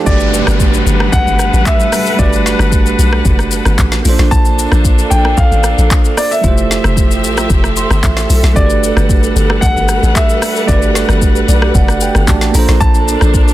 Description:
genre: amapiano.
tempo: 113 BPM.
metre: 4/4.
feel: straight.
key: G major.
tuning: A4 = 440 Hz.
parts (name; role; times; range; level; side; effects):
bell-like tine electric piano; accompaniment; 0.0-13.5 s; G3 to C6; -18 LUFS; right 6 dB; none.
warm studio string section; sustained chords; 0.0-13.5 s; F3 to F#5; -19 LUFS; left 1 dB; sidechain pumping.
warm grand piano; melody; 0.1-13.5 s; D5 to A5; -18 LUFS; equal; digital delay.
hollow log drum bass; bass; 0.1-13.5 s; F1 to B1; -13 LUFS; equal; none.
afro-pop drum kit; drums; 0.1-13.5 s; handclaps, hi-hat, kick drum, rim click, shaker, snare drum; -14 LUFS; equal; soft clipping on snare.
downlifter; sound effects; 0.1-4.3 s; none; -22 LUFS; equal; none.
room: little or no reverb.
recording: dense, heavily limited modern master.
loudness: -9 LUFS.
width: side -14 dB against mid.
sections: 0.1-13.5 A section.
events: drop 0.1-13.5; tine electric piano fill 7.5-8.6, 11.2-12.8.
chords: 0.1 Gmaj9; 4.1 Bbmaj9; 6.4 Fmaj9; 8.6 Gmaj9; 12.5 Bbmaj9.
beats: | 0.07 0.60 1.13 1.66 | 2.19 2.72 3.25 3.79 | 4.32 4.85 5.38 5.91 | 6.44 6.97 7.50 8.03 | 8.56 9.10 9.63 10.16 | 10.69 11.22 11.75 12.28 | 12.81 13.34.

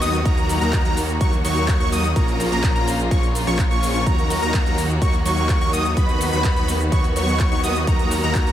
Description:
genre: EDM, festival progressive house.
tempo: 126 BPM.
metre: 4/4.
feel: straight.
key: Eb minor.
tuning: A4 = 441 Hz.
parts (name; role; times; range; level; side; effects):
rich studio string section; sustained chords; 0.0-8.5 s; Db3 to Gb4; -29 LUFS; equal; sidechain pumping.
wide unison lead; arpeggios; 0.0-8.5 s; Bb5 to D#6; -25 LUFS; equal; analog chorus, sidechain pumping, diffuse ambient delay.
supersaw chords; riff; 0.0-8.5 s; F3 to D#5; -24 LUFS; equal; sidechain pumping, diffuse ambient delay.
detuned saw bass; bass; 0.0-8.5 s; Bb1 to D#2; -24 LUFS; equal; sidechain pumping.
big-room dance drum kit; drums; 0.0-8.5 s; handclaps, hi-hat, shaker; -30 LUFS; equal; overdrive.
electronic kick drum; drums; 0.3-8.4 s; none; -20 LUFS; equal; overdrive.
room: moderate cathedral reverb, RT60 5.9 s.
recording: dreamy mix soaked in reverb.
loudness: -17 LUFS.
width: side -11 dB against mid.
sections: 0.0-8.5 A section.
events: none.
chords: 0.3 Ebm; 2.2 Bbm; 4.1 Ebm; 6.0 B/D#; 7.9 Ebm.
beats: | 0.26 0.73 1.21 1.68 | 2.16 2.64 3.11 3.59 | 4.06 4.54 5.02 5.49 | 5.97 6.45 6.92 7.40 | 7.87 8.35.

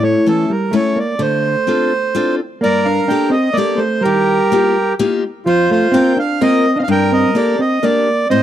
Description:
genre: musette waltz.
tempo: 127 BPM.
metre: 3/4.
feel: straight.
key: G minor.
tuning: A4 = 439 Hz.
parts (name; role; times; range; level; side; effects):
accordion; melody; 0.0-8.4 s; F4 to G5; -16 LUFS; right 2 dB; none.
hollow-body jazz guitar; second line; 0.0-8.4 s; E3 to D4; -18 LUFS; right 2 dB; none.
picked steel-string acoustic guitar; accompaniment; 0.0-8.4 s; F2 to Bb4; -18 LUFS; left 4 dB; none.
room: small room ambience.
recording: dry, close 1970s-style studio recording.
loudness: -12 LUFS.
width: side -11 dB against mid.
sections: 0.0-2.6 A section; 2.6-8.4 B section.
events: none.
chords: 0.0 A; 1.2 Dm7; 2.6 Gmadd9; 4.0 Ebadd9; 5.5 Fsus4; 6.9 Gmadd9.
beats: 0.26 0.73 | 1.20 1.67 2.15 | 2.62 3.09 3.57 | 4.04 4.51 4.98 | 5.45 5.93 6.40 | 6.88 7.35 7.83 | 8.31.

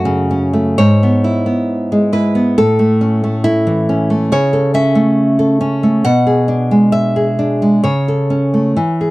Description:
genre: romantic piece for solo classical guitar.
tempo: 68 BPM.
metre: 2/4.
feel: uneven beats, rubato.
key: A major.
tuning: A4 = 440 Hz.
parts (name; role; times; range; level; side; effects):
nylon-string guitar; solo; 0.0-9.1 s; F#2 to F#5; -11 LUFS; equal; none.
room: little or no reverb.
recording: dry, close 1970s-style studio recording.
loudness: -11 LUFS.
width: side -19 dB against mid.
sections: 0.0-9.1 A section.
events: none.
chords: 0.0 F#m; 0.8 E/G#; 2.6 A; 4.3 A/C#; 6.0 E7/B; 7.8 A/C#.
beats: | 0.80 1.70 | 2.58 3.46 | 4.31 5.17 | 6.04 6.93 | 7.83 8.75.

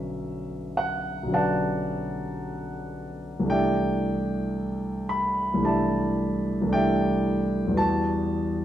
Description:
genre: classical, impressionist solo piano.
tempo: 56 BPM.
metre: 4/4.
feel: rubato.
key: unclear.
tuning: A4 = 440 Hz.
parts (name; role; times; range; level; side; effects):
warm concert grand piano; solo; 0.0-8.6 s; B1 to B5; -24 LUFS; equal; none.
room: wet recital hall reverb, RT60 1.6 s.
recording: none.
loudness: -23 LUFS.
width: side -11 dB against mid.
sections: 0.0-8.6 A section.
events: none.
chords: 0.0 Bm9; 3.5 C69; 7.8 Emadd9.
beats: 0.23 1.34 2.42 | 3.50 4.57 5.63 6.71 | 7.78.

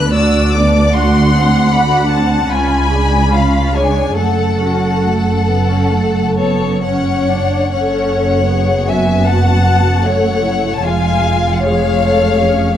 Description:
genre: classical, slow romantic movement for string orchestra.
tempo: 62-80 BPM.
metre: 4/4.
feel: rubato.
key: F# minor.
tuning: A4 = 440 Hz.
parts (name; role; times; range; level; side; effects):
clear chamber violin section; melody; 0.0-12.7 s; C#5 to F#6; -20 LUFS; left 7 dB; none.
rich studio violin section; second line; 0.0-12.8 s; A4 to G#5; -18 LUFS; left 2 dB; none.
rich chamber viola section; accompaniment; 0.0-12.8 s; G#3 to A4; -19 LUFS; equal; none.
rich chamber double bass section; bass; 0.0-12.8 s; E#1 to D2; -17 LUFS; right 2 dB; none.
warm chamber cello section; bass; 0.0-12.8 s; C#2 to F#2; -17 LUFS; right 2 dB; none.
room: moderate scoring stage reverb, RT60 1.6 s.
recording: dark, warm production.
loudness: -11 LUFS.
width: side -10 dB against mid.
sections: 0.0-7.7 A section; 7.7-12.8 B section.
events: none.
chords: 0.0 Bm/D; 0.9 D7; 2.5 C#7b9; 4.2 F#m; 10.8 C#/E#.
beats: 0.14 | 0.93 1.71 2.50 3.32 | 4.18 5.05 5.91 6.85 | 7.73 8.50 9.27 10.04 | 10.83 11.62 12.39.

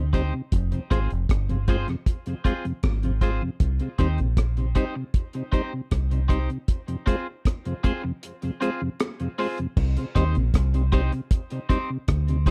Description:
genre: dub reggae.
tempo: 78 BPM.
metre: 4/4.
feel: straight.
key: C minor.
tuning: A4 = 440 Hz.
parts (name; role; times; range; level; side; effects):
mellow tonewheel organ; accompaniment; 0.0-12.5 s; F2 to F4; -32 LUFS; equal; overdrive, chorus vibrato, slow rotary speaker, dub echo.
deep dub fingered electric bass; bass; 0.0-12.5 s; F1 to Eb2; -26 LUFS; equal; none.
electric guitar at the edge of break-up; accompaniment; 0.1-12.5 s; C4 to C5; -34 LUFS; equal; subtle chorus, dub echo.
deep reggae drum kit; drums; 0.1-12.5 s; crash cymbal, hi-hat, kick drum, rim click; -25 LUFS; equal; none.
room: little or no reverb.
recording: dry, close 1970s-style studio recording.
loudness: -25 LUFS.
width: mono.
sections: 0.0-9.8 A section; 9.8-12.5 B section.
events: break 6.7-9.8; kick muted 8.2-9.8.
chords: 0.0 Cm; 0.5 Fm; 3.6 Cm; 6.7 Fm; 9.8 Cm.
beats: | 0.52 1.29 2.06 2.83 | 3.60 4.37 5.14 5.92 | 6.69 7.46 8.23 9.00 | 9.77 10.54 11.31 12.08.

